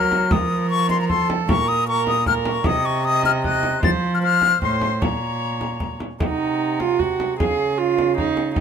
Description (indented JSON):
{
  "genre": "classical, renaissance-style consort dance",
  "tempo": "153 BPM",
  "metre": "3/4",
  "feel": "straight",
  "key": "Bb minor",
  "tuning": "A4 = 441 Hz",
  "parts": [
    { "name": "bright silver concert flute", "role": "melody", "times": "0.0-8.6 s", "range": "F5 to A6", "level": "-22 LUFS", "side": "left 7 dB", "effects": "none" },
    { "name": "warm viola", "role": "second line", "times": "0.0-8.6 s", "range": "Eb4 to Eb5", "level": "-23 LUFS", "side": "right 7 dB", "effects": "none" },
    { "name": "warm cello", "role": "bass", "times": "0.0-8.6 s", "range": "A2 to Gb3", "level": "-24 LUFS", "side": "right 1 dB", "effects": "none" },
    { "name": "frame drum", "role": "percussion", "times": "0.1-8.6 s", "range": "none", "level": "-24 LUFS", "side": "equal", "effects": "none" }
  ],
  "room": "light reverb",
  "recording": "close, detailed microphones",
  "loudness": "-18 LUFS",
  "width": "side -7 dB against mid",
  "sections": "0.0-6.2 A section; 6.2-8.6 B section",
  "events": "none",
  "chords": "0.3 Fsus4; 1.5 Bbmadd11; 2.7 Cdim; 3.8 F; 5.0 Bbm; 6.2 Cdim; 7.4 Db"
}